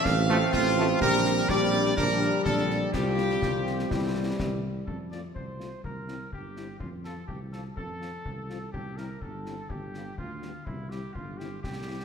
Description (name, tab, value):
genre	military-style march for wind band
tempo	124 BPM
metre	2/4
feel	straight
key	F major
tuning	A4 = 439 Hz
part	warm trumpet section	melody	0.0-12.0 s	E4 to F5	-31 LUFS	equal	none
part	mellow euphonium	second line	0.0-4.6 s	C4 to G4	-30 LUFS	right 4 dB	none
part	mellow tuba	bass	0.1-12.0 s	G1 to F2	-32 LUFS	right 2 dB	none
part	concert snare drum, concert bass drum and clash cymbals	drums	0.1-12.0 s	none	-36 LUFS	left 2 dB	none
part	mellow French horn section	accompaniment	0.3-12.0 s	F3 to G4	-33 LUFS	left 7 dB	none
part	warm trombone section	sustained chords	0.3-4.6 s	E3 to A3	-34 LUFS	right 2 dB	none
room	wet concert hall reverb, RT60 2.1 s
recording	none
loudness	-25 LUFS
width	side -6 dB against mid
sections	0.0-4.9 A section; 4.9-12.0 B section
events	none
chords	0.0 F/A; 1.0 Gm/Bb; 2.9 Csus4; 3.9 C; 4.9 F; 5.8 C7; 6.8 F; 8.7 C; 9.7 G7; 10.7 C